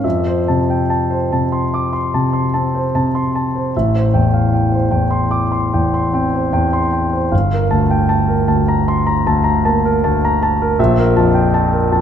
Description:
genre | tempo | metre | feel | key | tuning
classical, impressionist solo piano | 46-56 BPM (dotted quarters) | 9/8 | rubato | F major | A4 = 441 Hz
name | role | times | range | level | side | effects
warm concert grand piano | solo | 0.0-12.0 s | G1 to D6 | -13 LUFS | equal | none
room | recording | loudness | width
moderate scoring stage reverb, RT60 1.8 s | minimal, uncompressed stereo recording | -13 LUFS | side -8 dB against mid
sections
0.0-12.0 A section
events
none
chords
0.0 Fmaj7; 3.7 Am7; 7.3 Gm9; 10.8 Bbmaj7(no3)

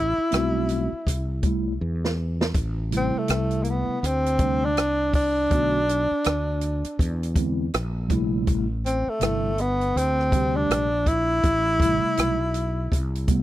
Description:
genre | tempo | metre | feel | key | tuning
hip hop, jazz-hop | 81 BPM | 4/4 | swing 60% on 16ths | A dorian | A4 = 441 Hz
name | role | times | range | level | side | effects
mellow tenor saxophone | melody | 0.0-13.3 s | A3 to E4 | -24 LUFS | equal | none
mellow fretless electric bass | bass | 0.0-13.4 s | G1 to E2 | -27 LUFS | equal | none
mellow tine electric piano | accompaniment | 0.3-13.4 s | C3 to G4 | -27 LUFS | equal | medium stereo tremolo
open jazz drum kit | drums | 0.3-13.4 s | hi-hat, kick drum, rim click, snare drum | -24 LUFS | equal | none
room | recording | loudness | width
studio reverb | dry, close 1970s-style studio recording | -21 LUFS | side -14 dB against mid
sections
0.0-2.5 A section; 2.5-13.4 A section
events
drum fill 1.8-2.5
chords
0.0 Am7; 5.5 Bm7; 7.0 E7b13; 8.5 Am7

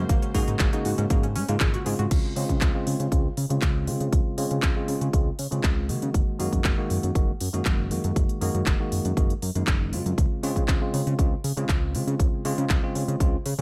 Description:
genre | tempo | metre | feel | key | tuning
nu-disco, nu disco | 119 BPM | 4/4 | straight | Db major | A4 = 440 Hz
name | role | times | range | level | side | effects
bell-like tine electric piano | accompaniment | 0.0-13.6 s | Db3 to Gb4 | -32 LUFS | equal | low-pass filter
string machine, full ensemble | sustained chords | 0.0-2.1 s | Ab3 to C5 | -46 LUFS | equal | none
fat analog bass | bass | 0.0-13.6 s | Gb1 to Db3 | -30 LUFS | equal | none
analog pluck | arpeggios | 0.1-2.0 s | Bb3 to Ab4 | -38 LUFS | equal | chorus, cassette tape, sidechain pumping, dub echo
electronic kick drum | drums | 0.1-13.3 s | none | -26 LUFS | equal | small room ambience
house drum kit | drums | 0.1-13.6 s | crash cymbal, handclaps, hi-hat | -34 LUFS | equal | small room ambience
room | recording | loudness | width
little or no reverb | none | -25 LUFS | mono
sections
0.0-2.1 A section; 2.1-13.6 B section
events
drop 0.0-2.1; filter sweep on tine electric piano 2.1-13.6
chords
0.1 Ab9sus4; 2.1 Dbmaj7; 6.1 Gb69; 10.2 Dbmaj7

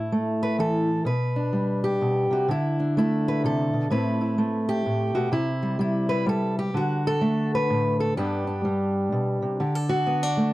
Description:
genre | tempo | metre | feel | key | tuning
folk, solo fingerstyle acoustic guitar | 127 BPM | 3/4 | swing 63% on 8ths | G major | A4 = 441 Hz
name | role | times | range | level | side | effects
fingerpicked steel-string acoustic guitar | solo | 0.0-10.5 s | G2 to B4 | -22 LUFS | equal | none
room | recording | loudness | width
light reverb | dark, warm production | -22 LUFS | side -17 dB against mid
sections
0.0-9.6 A section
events
none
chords
0.0 A5; 1.1 G/B; 2.5 D5; 3.9 Am; 5.3 C; 6.7 D; 8.2 G; 9.6 D

